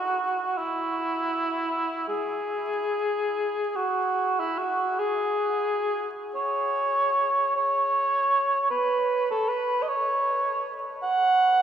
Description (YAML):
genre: classical, free, expressive piece for unaccompanied cor anglais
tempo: 30-53 BPM (dotted quarters)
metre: 6/8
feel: rubato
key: C# minor from 3.8 s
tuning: A4 = 438 Hz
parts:
  - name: mellow cor anglais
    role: solo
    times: 0.0-11.6 s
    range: E4 to F#5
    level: -23 LUFS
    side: right 1 dB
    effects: none
room: wet cathedral reverb, RT60 6.8 s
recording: in a vast, echoing space, vinyl crackle, studio reverb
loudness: -23 LUFS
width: side -9 dB against mid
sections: 0.0-3.8 A section; 3.8-11.6 B section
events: none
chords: none